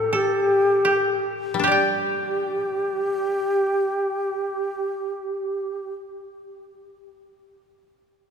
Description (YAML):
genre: japanese traditional, Japanese chamber music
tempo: 38 BPM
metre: 2/4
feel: rubato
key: unclear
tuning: A4 = 440 Hz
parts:
  - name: bright reedy long shakuhachi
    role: melody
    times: 0.0-5.9 s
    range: G4 to A4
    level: -23 LUFS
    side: equal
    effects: none
  - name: koto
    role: second line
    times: 0.0-6.0 s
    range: G4 to G5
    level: -25 LUFS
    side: right 2 dB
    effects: none
  - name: koto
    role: accompaniment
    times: 0.0-5.9 s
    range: A2 to G4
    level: -31 LUFS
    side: left 5 dB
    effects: none
room: wet cathedral reverb, RT60 4.6 s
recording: minimal, uncompressed stereo recording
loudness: -21 LUFS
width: side -7 dB against mid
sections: 0.0-1.7 A section; 1.7-8.0 B section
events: slowing down 0.0-1.7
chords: none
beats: 0.13 | 1.66 3.26 | 4.83